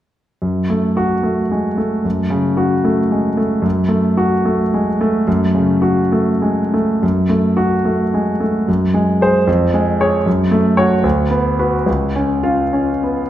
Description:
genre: classical, romantic character piece for solo piano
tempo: 64-79 BPM (dotted quarters)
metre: 6/8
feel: rubato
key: F# minor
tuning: A4 = 440 Hz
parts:
  - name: clear concert grand piano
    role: solo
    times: 0.4-13.3 s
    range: C#2 to C#5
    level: -14 LUFS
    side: equal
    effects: none
room: wet scoring stage reverb, RT60 1.4 s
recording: none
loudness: -14 LUFS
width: side -12 dB against mid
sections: 0.4-7.0 A section; 7.0-13.3 B section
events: none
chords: 0.4 F#m; 8.7 G#7/F#; 9.5 C#/E#; 10.3 F#m; 11.0 Bm/D; 11.9 C#

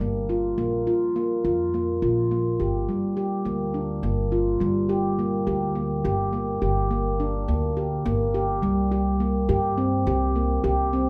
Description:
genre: contemporary instrumental, chamber music in an uneven meter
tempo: 209 BPM (eighths)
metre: 7/8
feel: straight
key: G minor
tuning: A4 = 439 Hz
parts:
  - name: handpan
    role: arpeggios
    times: 0.0-11.1 s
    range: G3 to G4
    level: -26 LUFS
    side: equal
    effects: none
  - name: upright bass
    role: bass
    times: 0.0-11.1 s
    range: G1 to G2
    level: -30 LUFS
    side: equal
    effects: none
room: moderate recital hall reverb, RT60 1.8 s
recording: none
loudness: -24 LUFS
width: mono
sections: 0.0-4.6 A section; 4.6-11.1 B section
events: none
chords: 0.0 Gm; 0.6 Bb5; 2.6 Gm; 8.6 C5

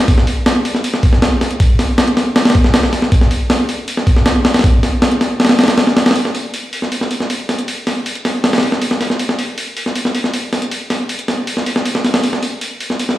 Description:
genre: drum and bass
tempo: 158 BPM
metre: 4/4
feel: straight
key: none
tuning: none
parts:
  - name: breakbeat sampler-style drum kit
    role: drums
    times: 0.1-13.2 s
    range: hi-hat, kick drum, snare drum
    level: -13 LUFS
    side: equal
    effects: none
room: moderate plate reverb, RT60 1.5 s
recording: played on a big sound system in a bare room, large studio reverb, vinyl crackle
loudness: -13 LUFS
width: side -15 dB against mid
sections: 0.0-6.2 A section; 6.2-13.2 B section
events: drop 0.0-6.2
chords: none

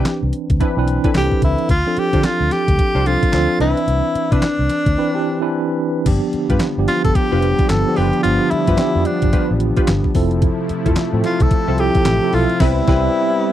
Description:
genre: R&B, new jack swing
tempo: 110 BPM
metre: 4/4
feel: swing 61% on 16ths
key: unclear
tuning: A4 = 440 Hz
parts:
  - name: breathy tenor saxophone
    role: melody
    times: 0.0-13.5 s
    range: D4 to A4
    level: -20 LUFS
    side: left 1 dB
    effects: slapback echo
  - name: tine electric piano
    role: accompaniment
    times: 0.0-13.5 s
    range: E3 to B4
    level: -20 LUFS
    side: right 2 dB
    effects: fast stereo tremolo
  - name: funky polysynth comp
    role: stabs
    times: 0.0-13.1 s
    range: C4 to C5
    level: -25 LUFS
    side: left 2 dB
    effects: chorus
  - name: vintage muted fingered electric bass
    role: bass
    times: 0.0-13.1 s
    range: F1 to D3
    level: -20 LUFS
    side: equal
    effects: none
  - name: crisp 8-bit digital drum machine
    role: drums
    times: 0.1-13.1 s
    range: crash cymbal, handclaps, hi-hat, kick drum, snare drum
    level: -18 LUFS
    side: equal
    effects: overdrive
  - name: brassy analog pad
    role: sustained chords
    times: 6.1-13.5 s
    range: C3 to E4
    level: -25 LUFS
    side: left 1 dB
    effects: chorus
room: little or no reverb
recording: dry, close 1970s-style studio recording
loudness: -14 LUFS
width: side -12 dB against mid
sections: 0.0-6.1 A section; 6.1-13.5 B section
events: break 5.0-6.1; band accent 12.6-13.5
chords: 0.0 Cmaj9; 1.7 Dm7; 3.6 Cmaj9; 6.1 G7; 10.2 Fmaj7; 12.6 Cmaj7

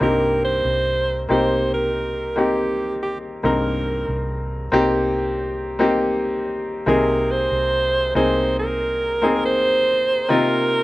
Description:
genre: pop ballad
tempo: 70 BPM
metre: 4/4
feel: straight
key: unclear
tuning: A4 = 439 Hz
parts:
  - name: warm alto saxophone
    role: melody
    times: 0.0-10.8 s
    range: G4 to C5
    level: -21 LUFS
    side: right 2 dB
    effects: slapback echo
  - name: clear grand piano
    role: accompaniment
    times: 0.0-10.8 s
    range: G2 to Bb4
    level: -20 LUFS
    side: left 1 dB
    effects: none
  - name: vintage muted fingered electric bass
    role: bass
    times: 0.0-10.8 s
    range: C2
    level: -28 LUFS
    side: equal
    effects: none
room: little or no reverb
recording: recorded outdoors, with no room sound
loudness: -18 LUFS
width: side -18 dB against mid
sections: 0.0-10.8 A section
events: none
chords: 0.0 Cm7; 6.9 Abadd9/C; 10.3 F7sus4

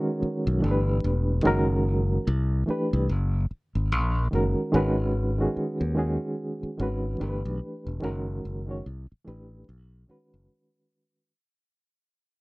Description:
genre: R&B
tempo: 73 BPM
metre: 4/4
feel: swing 60% on 16ths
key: unclear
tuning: A4 = 440 Hz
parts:
  - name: bright reed electric piano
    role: accompaniment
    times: 0.0-11.3 s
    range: D#3 to C#5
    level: -26 LUFS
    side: right 1 dB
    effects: fast tremolo
  - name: modern bright fingered electric bass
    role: bass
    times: 0.2-10.5 s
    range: E1 to D#2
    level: -26 LUFS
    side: equal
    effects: none
room: little or no reverb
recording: dry, close 1970s-style studio recording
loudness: -24 LUFS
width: side -22 dB against mid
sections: 0.0-4.7 A section; 4.7-11.3 B section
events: fade-out 4.7-11.3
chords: 0.0 G#m7; 0.6 G69; 1.4 F#69; 2.3 C69; 3.1 F#; 4.7 G#m7; 7.2 G69; 8.0 F#69; 8.8 C69; 9.7 B69

